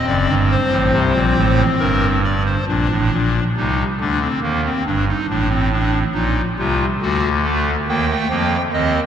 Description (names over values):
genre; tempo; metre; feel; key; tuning
classical, baroque-style 3-part fugue for pipe organ; 70 BPM; 3/4; straight; unclear; A4 = 440 Hz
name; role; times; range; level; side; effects
pipe organ, clarinet reed; solo; 0.0-9.0 s; F#1 to G5; -15 LUFS; equal; none
room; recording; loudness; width
wet cathedral reverb, RT60 4.1 s; dark, warm production; -15 LUFS; side -9 dB against mid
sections
0.0-2.7 A section; 2.7-9.1 B section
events
none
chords
0.1 D7/F#; 1.8 Gm; 2.7 Bb; 4.4 Eb; 5.3 Adim; 7.0 D; 7.9 Eb